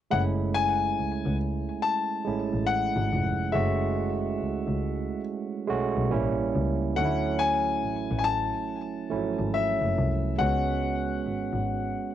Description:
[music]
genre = R&B, neo-soul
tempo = 70 BPM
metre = 4/4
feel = swing 63% on 16ths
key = F# minor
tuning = A4 = 438 Hz
[part]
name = clear grand piano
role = melody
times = 0.1-12.1 s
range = E5 to A5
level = -29 LUFS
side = left 6 dB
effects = cassette tape, tape echo
[part]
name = barky tine electric piano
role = accompaniment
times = 0.1-12.1 s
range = E#3 to F#4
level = -29 LUFS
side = right 6 dB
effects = overdrive, cassette tape
[part]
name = rich double bass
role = bass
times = 0.1-11.9 s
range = E#1 to D2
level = -30 LUFS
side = left 1 dB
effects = none
[sound]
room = light reverb, small room ambience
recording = home recording on cassette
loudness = -25 LUFS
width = side -11 dB against mid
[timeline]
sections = 0.1-12.1 A section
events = none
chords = 0.1 F#m9; 6.1 A7b9; 7.0 Dmaj9; 10.4 C#7sus4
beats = | 0.10 0.96 1.81 2.67 | 3.53 4.39 5.24 6.10 | 6.96 7.82 8.67 9.53 | 10.39 11.24 12.10

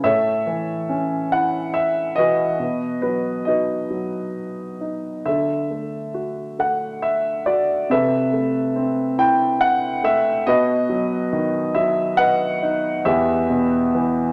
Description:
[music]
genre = classical, lyrical solo piano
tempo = 70 BPM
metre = 3/4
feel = rubato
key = unclear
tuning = A4 = 440 Hz
[part]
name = warm grand piano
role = solo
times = 0.0-14.3 s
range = E2 to G5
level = -21 LUFS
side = equal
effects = none
[sound]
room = moderate recital hall reverb, RT60 1.7 s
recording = none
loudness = -21 LUFS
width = mono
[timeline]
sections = 0.0-14.3 A section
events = none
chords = 0.1 A; 2.6 B; 5.3 Dadd9; 7.9 Amadd9/C; 10.5 B; 13.1 Em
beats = | 0.05 0.91 1.76 | 2.62 3.48 4.36 | 5.27 6.16 7.04 | 7.92 8.77 9.62 | 10.47 11.33 12.19 | 13.06 13.94

